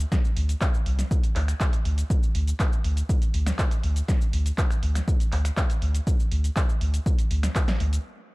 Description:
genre	acid house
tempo	121 BPM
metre	4/4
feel	straight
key	unclear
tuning	A4 = 440 Hz
part	warm sub bass	bass	0.0-8.0 s	C2 to D2	-23 LUFS	equal	tube saturation, sidechain pumping
part	punchy analog drum machine	drums	0.0-8.0 s	cabasa, finger snaps, handclaps, hi-hat, snare drum	-32 LUFS	equal	none
part	electronic kick drum	drums	0.1-7.7 s	none	-23 LUFS	equal	none
room	little or no reverb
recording	dark, warm production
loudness	-22 LUFS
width	side -23 dB against mid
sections	0.0-8.3 A section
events	stop 8.1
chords	none

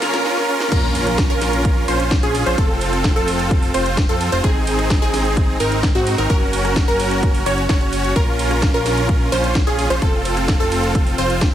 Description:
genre	EDM, festival progressive house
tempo	129 BPM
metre	4/4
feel	straight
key	Bb minor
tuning	A4 = 444 Hz
part	supersaw chords	riff	0.0-11.4 s	C4 to Db5	-20 LUFS	right 1 dB	sidechain pumping, digital delay
part	house drum kit	drums	0.0-11.5 s	crash cymbal, hi-hat, ride cymbal, rim click, snare drum	-26 LUFS	equal	small room ambience
part	riser and impact	sound effects	0.0-2.6 s	none	-30 LUFS	equal	none
part	wide unison pluck	arpeggios	0.7-11.4 s	Gb4 to Db5	-24 LUFS	equal	sidechain pumping, digital delay
part	fat analog bass	bass	0.7-11.5 s	F1 to Ab2	-23 LUFS	equal	sidechain pumping
part	electronic kick drum	drums	0.7-11.5 s	none	-18 LUFS	equal	high-pass filter on kick, small room ambience
room	light reverb, digital ambience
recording	high-pass filter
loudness	-15 LUFS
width	side -11 dB against mid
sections	0.7-11.5 A section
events	drum fill 0.0, 0.3-0.7; riser 0.0; drop 0.7-11.5; impact 0.7-2.6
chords	0.0 Bbm; 2.6 F; 4.4 Ab; 6.3 Gb; 8.2 Bbm; 10.0 F

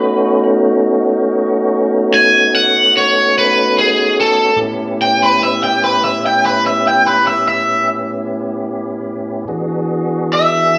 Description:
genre	blues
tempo	49 BPM (dotted quarters)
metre	12/8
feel	straight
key	unclear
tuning	A4 = 442 Hz
part	raw garage guitar	melody	0.0-10.8 s	G#4 to G#5	-14 LUFS	equal	overdrive, phaser
part	tonewheel organ	sustained chords	0.0-10.8 s	A2 to G#4	-18 LUFS	equal	slow rotary speaker, chorus vibrato
room	wet recital hall reverb, RT60 1.4 s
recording	recorded in a church or concert hall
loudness	-14 LUFS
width	mono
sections	0.0-10.8 A section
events	none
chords	0.0 B9; 4.6 A9; 9.5 E9

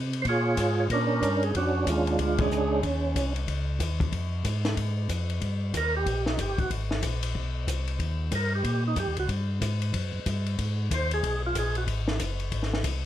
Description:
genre	soul jazz organ trio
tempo	186 BPM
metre	4/4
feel	swing 62% on 8ths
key	Eb mixolydian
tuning	A4 = 442 Hz
part	mellow tonewheel organ	bass	0.0-13.1 s	Gb1 to C3	-28 LUFS	equal	slow rotary speaker
part	compact cocktail drum kit	drums	0.1-12.9 s	hi-hat, kick drum, ride cymbal, snare drum	-32 LUFS	left 2 dB	none
part	percussive tonewheel organ	melody	0.2-3.3, 5.8-11.8 s	Ab3 to C#5	-27 LUFS	right 2 dB	slow rotary speaker, overdrive, chorus vibrato
room	light reverb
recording	none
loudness	-25 LUFS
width	side -12 dB against mid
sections	0.0-5.4 A section; 5.4-13.1 B section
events	band accent 2.3; tonewheel organ solo 5.4-13.1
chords	0.3 Bb7#9; 2.8 Cm; 4.1 Fm; 5.4 Eb; 6.7 Ab; 8.0 Eb(#9); 10.6 Ab7#9

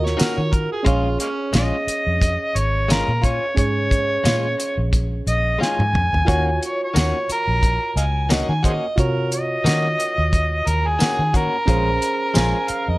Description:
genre	straight-eighth soul blues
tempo	89 BPM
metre	4/4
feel	swing 56% on 16ths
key	Bb minor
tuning	A4 = 440 Hz
part	overdriven harmonica	second line	0.0-1.5, 8.0-13.0 s	Ab3 to Ab5	-26 LUFS	right 2 dB	none
part	reed electric piano	accompaniment	0.0-13.0 s	Db4 to Db5	-28 LUFS	right 2 dB	overdrive
part	vintage muted fingered electric bass	bass	0.0-13.0 s	Ab1 to Eb3	-22 LUFS	equal	none
part	cloth-damped thuddy drum kit	drums	0.1-12.9 s	hi-hat, kick drum, snare drum, tambourine, toms	-20 LUFS	equal	none
part	direct-recorded clean electric guitar	stabs	0.2-12.6 s	Eb3 to Gb4	-27 LUFS	left 3 dB	digital delay
part	mellow harmonica	melody	1.6-13.0 s	Ab4 to Ab5	-22 LUFS	equal	overdrive
room	light reverb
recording	lossy compression artefacts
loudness	-17 LUFS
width	side -20 dB against mid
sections	0.0-13.0 A section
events	drum fill 5.6-6.3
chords	0.0 Ebm7; 0.9 Bbm7; 6.3 Ebm7; 11.7 Bbm7

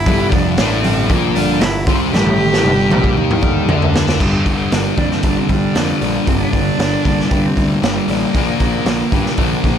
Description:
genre	quiet-loud alternative rock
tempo	116 BPM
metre	4/4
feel	straight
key	G minor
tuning	A4 = 440 Hz
part	warm cello	melody	0.0-9.6 s	G3 to G4	-22 LUFS	right 2 dB	tape echo
part	fingerpicked steel-string acoustic guitar	arpeggios	0.0-9.8 s	G2 to D4	-22 LUFS	right 1 dB	none
part	thick fuzz guitar	riff	0.0-9.8 s	F2 to Eb4	-18 LUFS	left 2 dB	distortion
part	fuzz picked electric bass	bass	0.0-9.8 s	F1 to G2	-21 LUFS	equal	overdrive
part	raw garage drum kit	drums	0.1-9.8 s	crash cymbal, hi-hat, kick drum, snare drum, toms	-18 LUFS	equal	none
room	light reverb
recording	none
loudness	-13 LUFS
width	side -8 dB against mid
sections	0.0-4.2 A section; 4.2-9.8 B section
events	drum fill 2.1-4.2; cello solo 4.2-9.8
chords	0.0 Gm; 8.3 Bb

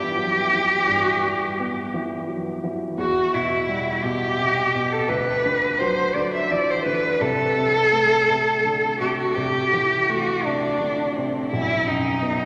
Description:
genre	classical, romantic duo for cello and grand piano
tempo	56 BPM (dotted quarters)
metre	12/8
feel	rubato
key	E minor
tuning	A4 = 440 Hz
part	warm cello	melody	0.0-12.5 s	C4 to E5	-22 LUFS	equal	none
part	warm grand piano	accompaniment	0.0-12.5 s	B1 to B3	-29 LUFS	equal	none
room	wet church reverb, RT60 3.5 s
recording	none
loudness	-22 LUFS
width	mono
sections	0.0-12.5 A section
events	none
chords	0.0 Em/G; 3.0 Em; 5.1 Bm/D; 7.2 Am/C; 11.5 B

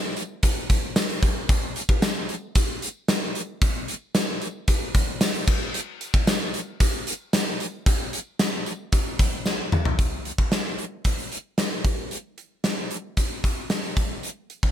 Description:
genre	pop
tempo	113 BPM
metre	4/4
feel	straight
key	none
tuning	none
part	gated 80s drum kit	drums	0.2-14.7 s	crash cymbal, hi-hat, kick drum, snare drum, tambourine, toms	-22 LUFS	equal	none
part	tambourine	percussion	0.2-9.8 s	none	-42 LUFS	left 4 dB	none
room	light reverb, small room ambience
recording	none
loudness	-22 LUFS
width	side -10 dB against mid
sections	0.0-10.0 A section; 10.0-14.7 B section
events	drum fill 9.5-10.0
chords	none

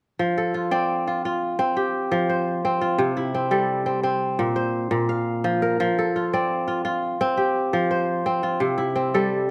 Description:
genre	west african traditional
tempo	86 BPM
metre	4/4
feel	straight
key	F major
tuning	A4 = 440 Hz
part	kora	solo	0.2-9.5 s	Bb2 to F5	-23 LUFS	equal	none
room	moderate recital hall reverb, RT60 1.6 s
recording	none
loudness	-23 LUFS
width	mono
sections	0.2-9.5 A section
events	none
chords	0.2 F; 3.0 C; 4.4 Bb5; 5.8 F; 8.6 C

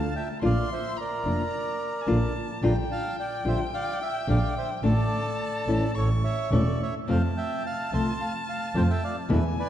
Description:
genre	tango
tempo	109 BPM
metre	4/4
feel	rubato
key	unclear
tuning	A4 = 440 Hz
part	bandoneon	melody	0.0-9.7 s	A4 to C6	-31 LUFS	right 2 dB	slapback echo
part	dark violin	second line	0.0-9.7 s	G5 to C#6	-35 LUFS	left 3 dB	none
part	clear double bass	bass	0.0-9.5 s	E1 to F2	-27 LUFS	right 1 dB	none
part	nylon-string guitar	accompaniment	0.4-9.4 s	B2 to F4	-29 LUFS	left 3 dB	none
room	moderate concert hall reverb, RT60 2.2 s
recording	dark, warm production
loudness	-24 LUFS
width	side -11 dB against mid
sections	0.0-9.7 A section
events	none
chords	0.4 Bb; 2.6 Gm7/Bb; 4.8 D5/A; 5.9 A; 7.1 F

